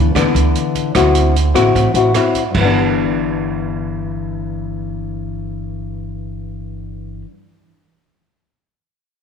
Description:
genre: bossa nova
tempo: 150 BPM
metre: 4/4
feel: straight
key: G major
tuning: A4 = 440 Hz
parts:
  - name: nylon-string guitar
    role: accompaniment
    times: 0.0-7.3 s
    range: G2 to F#4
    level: -17 LUFS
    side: left 5 dB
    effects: none
  - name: upright bass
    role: bass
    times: 0.0-7.2 s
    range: G1 to D2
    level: -20 LUFS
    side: right 3 dB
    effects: none
  - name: open jazz drum kit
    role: drums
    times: 0.2-2.6 s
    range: crash cymbal, hi-hat, kick drum, rim click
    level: -22 LUFS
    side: right 7 dB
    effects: none
room: moderate echo chamber reverb, RT60 1.5 s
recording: 1960s-style stereo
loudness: -14 LUFS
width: side -7 dB against mid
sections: 0.0-2.5 A section; 2.5-5.8 B section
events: none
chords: 0.0 G6; 0.9 D9; 2.5 G6

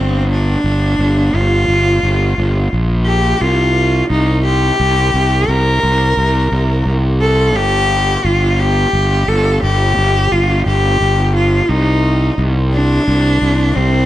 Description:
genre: post-rock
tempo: 58 BPM (dotted quarters)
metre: 6/8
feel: straight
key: unclear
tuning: A4 = 440 Hz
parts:
  - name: rich cello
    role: melody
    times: 0.0-14.1 s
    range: C4 to Bb4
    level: -15 LUFS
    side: equal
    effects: analog delay
  - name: fuzz fingered electric bass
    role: bass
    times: 0.0-14.1 s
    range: G1 to C2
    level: -14 LUFS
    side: equal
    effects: overdrive
room: light reverb, studio reverb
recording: none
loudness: -11 LUFS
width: side -14 dB against mid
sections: 0.0-14.1 A section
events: none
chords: 0.0 Gm7; 3.4 C5; 7.6 Fsus2/G; 11.7 Cm

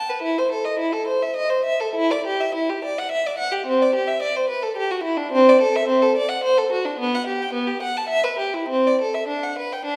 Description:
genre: classical, baroque-style suite movement for unaccompanied violin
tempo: 106 BPM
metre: 3/4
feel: uneven beats, rubato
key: G major from 5.3 s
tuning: A4 = 438 Hz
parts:
  - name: warm violin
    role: solo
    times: 0.0-10.0 s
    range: B3 to A5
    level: -21 LUFS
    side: equal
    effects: none
room: wet recital hall reverb, RT60 1.4 s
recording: recorded in a church or concert hall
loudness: -21 LUFS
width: mono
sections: 0.0-10.0 A section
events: none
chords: none

